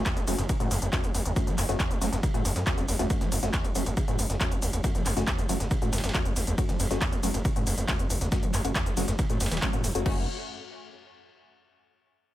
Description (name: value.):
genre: driving peak-time techno.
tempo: 138 BPM.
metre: 4/4.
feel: straight.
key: F# minor.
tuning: A4 = 436 Hz.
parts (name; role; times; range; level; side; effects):
wavetable chord stab; stabs; 0.0-10.2 s; A3 to F#4; -34 LUFS; left 2 dB; sidechain pumping, tape echo.
gritty driven synth bass; bass; 0.0-10.3 s; E1 to F#2; -31 LUFS; equal; distortion, sidechain pumping.
overdriven acid bass; riff; 0.1-10.3 s; E2 to F#3; -32 LUFS; equal; lush chorus, sidechain pumping, tape echo.
breakbeat sampler-style drum kit; drums; 0.1-9.9 s; ride cymbal, snare drum; -40 LUFS; right 2 dB; sidechain pumping on cymbals, high-pass filter on cymbals, high-pass filter on snare.
electronic kick drum; drums; 0.1-10.1 s; none; -29 LUFS; equal; none.
techno drum kit; drums; 0.1-10.1 s; crash cymbal, handclaps, hi-hat, shaker; -33 LUFS; left 1 dB; sidechain pumping on hats, sidechain pumping on perc, sidechain pumping on cymbals.
room: little or no reverb.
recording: none.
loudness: -25 LUFS.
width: side -14 dB against mid.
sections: 0.0-10.1 A section; 10.1-11.8 B section.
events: filter sweep on analog synth bass 0.0-10.1.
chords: 0.0 F#m; 10.1 N.C..